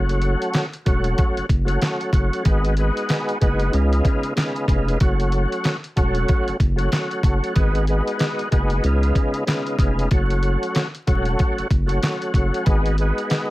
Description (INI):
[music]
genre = hip hop, boom-bap hip-hop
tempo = 94 BPM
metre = 4/4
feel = swing 61% on 16ths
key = F# dorian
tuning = A4 = 438 Hz
[part]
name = tonewheel organ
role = accompaniment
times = 0.0-13.5 s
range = C#3 to F#4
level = -23 LUFS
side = equal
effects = chorus vibrato, slow rotary speaker, cassette tape, high-pass filter, low-pass filter
[part]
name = saturated sub bass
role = bass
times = 0.0-13.1 s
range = E1 to C#2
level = -21 LUFS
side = equal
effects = none
[part]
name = dusty soul sampler-style drum kit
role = drums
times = 0.1-13.5 s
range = handclaps, hi-hat, kick drum, snare drum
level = -20 LUFS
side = equal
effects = vintage 12-bit sampler grit
[sound]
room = light reverb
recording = vinyl crackle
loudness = -18 LUFS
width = side -18 dB against mid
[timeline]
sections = 0.0-13.5 A section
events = none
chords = 0.0 F#m; 2.5 G#m7; 3.7 C#7; 5.0 F#m; 7.6 G#m7; 8.8 C#7; 10.1 F#m; 12.7 G#m7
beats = 0.54 1.18 1.82 | 2.46 3.09 3.73 4.37 | 5.01 5.65 6.28 6.92 | 7.56 8.20 8.84 9.48 | 10.11 10.75 11.39 12.03 | 12.67 13.31